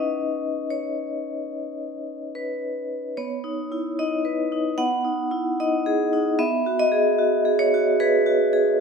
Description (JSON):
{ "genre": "classical, contemporary piece for solo vibraphone", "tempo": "74 BPM", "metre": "4/4", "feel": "straight", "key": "B major", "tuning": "A4 = 442 Hz", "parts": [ { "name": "vibraphone with medium hard mallets", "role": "solo", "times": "0.0-8.8 s", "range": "B3 to F#5", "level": "-21 LUFS", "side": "equal", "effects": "none" } ], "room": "moderate recital hall reverb, RT60 1.4 s", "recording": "minimal, uncompressed stereo recording", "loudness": "-21 LUFS", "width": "side -5 dB against mid", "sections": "0.0-8.8 A section", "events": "none", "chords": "0.0 C#sus2; 3.2 Badd9; 4.8 G#m7/B; 6.4 B69" }